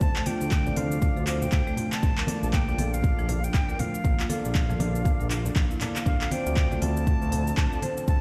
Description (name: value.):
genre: afro house.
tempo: 119 BPM.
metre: 4/4.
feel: swing 60% on 16ths.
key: D minor.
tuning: A4 = 440 Hz.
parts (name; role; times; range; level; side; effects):
bright reedy jazz flute; melody; 0.0-8.2 s; F5 to A5; -37 LUFS; equal; delay.
warm analog pad; sustained chords; 0.0-8.2 s; C3 to F4; -40 LUFS; equal; none.
smooth synth bass; bass; 0.0-8.2 s; Bb1 to D2; -32 LUFS; equal; tube saturation, sidechain pumping.
deep house drum kit; drums; 0.0-8.2 s; cabasa, handclaps, hi-hat; -37 LUFS; equal; none.
electronic kick drum; drums; 0.0-8.2 s; none; -27 LUFS; equal; none.
congas; percussion; 0.0-8.2 s; none; -36 LUFS; equal; none.
marimba with medium hard mallets; arpeggios; 0.2-8.0 s; F3 to D5; -36 LUFS; equal; sidechain pumping, delay.
mellow tonewheel organ; stabs; 0.3-7.8 s; Bb3 to D5; -41 LUFS; equal; slow rotary speaker, sidechain pumping, delay.
room: little or no reverb.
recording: played on a big sound system in a bare room, stone room reverb.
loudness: -26 LUFS.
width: mono.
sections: 0.0-8.2 A section.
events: none.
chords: 0.0 Dm7; 2.0 Bbmaj7; 6.1 Dm7.